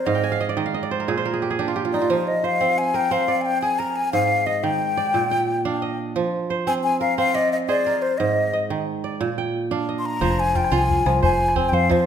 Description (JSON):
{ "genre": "west african traditional, West African string and xylophone music", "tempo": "118 BPM (dotted quarters)", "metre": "12/8", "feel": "straight", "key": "F dorian", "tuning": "A4 = 440 Hz", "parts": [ { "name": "breathy mellow silver concert flute", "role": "melody", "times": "0.0-12.1 s", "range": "C5 to C6", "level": "-21 LUFS", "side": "left 4 dB", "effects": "none" }, { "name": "kora", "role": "arpeggios", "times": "0.0-12.1 s", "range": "Ab2 to Ab5", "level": "-23 LUFS", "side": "right 5 dB", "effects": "none" }, { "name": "fingered electric bass", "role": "bass", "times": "10.2-11.9 s", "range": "F1 to F2", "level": "-23 LUFS", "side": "left 1 dB", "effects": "none" }, { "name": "calabash", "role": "percussion", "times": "10.2-12.0 s", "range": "none", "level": "-27 LUFS", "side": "left 4 dB", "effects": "none" } ], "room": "wet recital hall reverb, RT60 1.5 s", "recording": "minimal, uncompressed stereo recording", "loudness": "-19 LUFS", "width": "side -8 dB against mid", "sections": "0.0-10.2 A section; 10.2-12.1 B section", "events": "kora fill 0.1-2.1", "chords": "0.1 Ab5; 1.1 Bb; 2.1 Fm; 4.1 Ab5; 5.1 Bb; 6.2 Fm; 8.2 Ab5; 9.2 Bb; 10.2 Fm" }